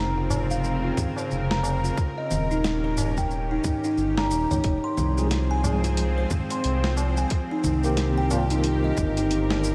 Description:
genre	organic downtempo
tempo	90 BPM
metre	4/4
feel	swing 60% on 16ths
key	F minor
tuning	A4 = 440 Hz
part	bowed-like drone	sustained chords	0.0-9.7 s	Db3 to C5	-33 LUFS	equal	built-in reverb, sidechain pumping
part	buzzing kalimba	arpeggios	0.0-9.7 s	Eb4 to C6	-30 LUFS	equal	low-pass filter, diffuse ambient delay
part	smooth synth bass	bass	0.0-9.7 s	Eb1 to Db2	-28 LUFS	equal	tube saturation
part	dusty soul sampler-style drum kit	drums	0.3-9.7 s	congas, hi-hat, shaker, snare drum	-34 LUFS	equal	small room ambience
part	tabla	percussion	0.3-9.7 s	none	-37 LUFS	equal	none
part	electronic kick drum	drums	1.0-9.1 s	none	-29 LUFS	equal	small room ambience
part	mellow tine electric piano	accompaniment	5.2-9.7 s	Eb3 to Ab4	-33 LUFS	equal	medium tremolo, sidechain pumping, diffuse ambient delay
room	moderate cathedral reverb, RT60 5.2 s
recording	dreamy mix soaked in reverb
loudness	-24 LUFS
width	mono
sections	0.0-9.7 A section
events	none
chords	0.0 Bbmadd9; 2.0 Eb7; 4.6 Fm; 7.3 Cm7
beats	0.64 1.31 | 1.98 2.64 3.31 3.98 | 4.64 5.31 5.97 6.64 | 7.31 7.97 8.64 9.31

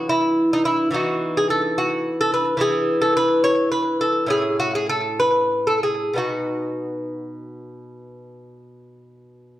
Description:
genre	classical, baroque-style dance for lute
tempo	60-73 BPM (dotted quarters)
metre	12/8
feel	rubato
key	unclear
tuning	A4 = 439 Hz
part	lute	solo	0.0-9.6 s	A2 to C#5	-19 LUFS	equal	slapback echo
room	moderate recital hall reverb, RT60 1.3 s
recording	dark, warm production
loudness	-18 LUFS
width	side -14 dB against mid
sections	0.0-9.6 A section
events	none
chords	0.0 F#5/E; 0.9 B/E; 2.6 E5; 4.3 A; 6.2 B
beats	0.10 0.94 1.79 | 2.63 3.45 4.31 5.21 | 6.17 7.15 8.13 9.10

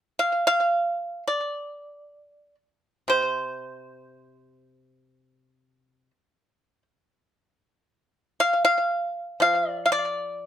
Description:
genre	chinese traditional, Chinese solo plucked strings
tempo	56-60 BPM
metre	4/4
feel	rubato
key	unclear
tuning	A4 = 435 Hz
part	pipa	solo	0.2-10.5 s	C3 to F5	-22 LUFS	equal	slapback echo
room	light reverb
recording	close, detailed microphones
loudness	-22 LUFS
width	side -10 dB against mid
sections	0.0-10.5 A section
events	none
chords	none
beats	0.20 1.26 2.32 | 3.35 4.37 5.37 6.36 | 7.37 8.39 9.42

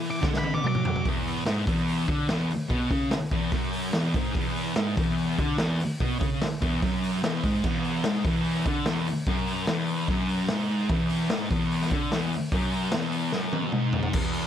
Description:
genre	garage rock duo or trio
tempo	146 BPM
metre	4/4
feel	straight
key	E mixolydian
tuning	A4 = 440 Hz
part	thick fuzz guitar	riff	0.0-14.5 s	E2 to F#3	-26 LUFS	equal	distortion
part	raw garage drum kit	drums	0.0-14.4 s	crash cymbal, hi-hat, kick drum, snare drum, toms	-28 LUFS	equal	none
part	octave-fuzz lead guitar	melody	0.1-1.1 s	B5 to D6	-31 LUFS	left 1 dB	distortion
room	light reverb, small room ambience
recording	vinyl crackle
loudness	-24 LUFS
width	side -10 dB against mid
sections	0.0-1.1 A section; 1.1-14.2 B section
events	lead electric guitar solo 0.0-1.1; drum fill 0.2-1.1, 13.3-14.2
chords	0.0 Dadd9; 1.1 E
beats	0.23 0.64 | 1.05 1.46 1.87 2.29 | 2.70 3.11 3.52 3.94 | 4.35 4.76 5.17 5.58 | 6.00 6.41 6.82 7.23 | 7.64 8.05 8.46 8.86 | 9.27 9.68 10.09 10.49 | 10.90 11.31 11.71 12.12 | 12.53 12.93 13.34 13.74 | 14.15

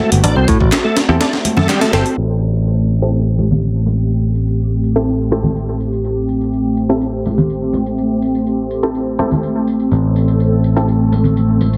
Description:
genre	breakbeat, breaks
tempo	124 BPM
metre	4/4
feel	straight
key	A dorian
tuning	A4 = 440 Hz
part	phased analog pad	sustained chords	0.0-11.8 s	A3 to A4	-22 LUFS	equal	phaser, chorus, sidechain pumping
part	bright tonewheel organ	riff	0.0-2.0 s	G3 to D4	-22 LUFS	equal	overdrive, chorus vibrato, slow rotary speaker, tube saturation, low-pass filter, tape echo
part	congas	percussion	0.0-11.7 s	none	-22 LUFS	equal	none
part	picked electric bass	bass	0.1-11.8 s	G1 to A2	-18 LUFS	equal	low-pass filter
part	breakbeat sampler-style drum kit	drums	0.1-2.2 s	hi-hat, kick drum, snare drum	-19 LUFS	equal	studio reverb
part	electronic handclaps and tambourine	drums	0.7-11.8 s	none	-29 LUFS	equal	studio reverb
part	orchestra-hit-like synth stab	stabs	1.1-10.8 s	C4 to A4	-22 LUFS	equal	built-in reverb, tape echo
room	light reverb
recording	heavily compressed radio sound, multiband compression, low-pass filter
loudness	-15 LUFS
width	mono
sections	0.0-2.2 A section; 2.2-11.8 B section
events	kick drops out 1.2-2.2; band accent 1.7; filter sweep 2.2-11.8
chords	0.0 Am7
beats	| 0.24 0.72 1.21 1.69 | 2.17 2.66 3.14 3.63 | 4.11 4.59 5.08 5.56 | 6.04 6.53 7.01 7.50 | 7.98 8.46 8.95 9.43 | 9.92 10.40 10.88 11.37

